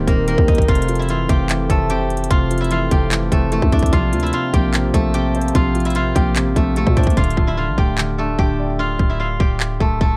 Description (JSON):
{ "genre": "hip hop, trap", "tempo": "148 BPM", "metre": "4/4", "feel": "half-time", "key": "D minor", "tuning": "A4 = 440 Hz", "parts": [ { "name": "steel-string zither", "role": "melody", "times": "0.0-10.2 s", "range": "A3 to G5", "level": "-24 LUFS", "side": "equal", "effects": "low-pass filter" }, { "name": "dark concert grand piano", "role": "accompaniment", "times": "0.0-10.2 s", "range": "C3 to D5", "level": "-26 LUFS", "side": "equal", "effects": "low-pass filter" }, { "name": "hand-pumped harmonium", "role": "sustained chords", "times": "0.0-7.1 s", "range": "Eb3 to A4", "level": "-31 LUFS", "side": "equal", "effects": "none" }, { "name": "growling 808-style bass", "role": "bass", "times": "0.0-10.2 s", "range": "D1 to Bb2", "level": "-23 LUFS", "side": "equal", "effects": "none" }, { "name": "trap drum kit", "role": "drums", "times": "0.1-10.1 s", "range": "handclaps, hi-hat, kick drum", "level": "-20 LUFS", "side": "equal", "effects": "none" } ], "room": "small room ambience", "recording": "dark, warm production", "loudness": "-18 LUFS", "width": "mono", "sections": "0.0-7.2 A section; 7.2-10.2 B section", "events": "hi-hats muted 7.2-10.2", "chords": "0.0 Eb6; 0.7 Fmaj7; 3.9 Bbsus2; 7.2 Dm" }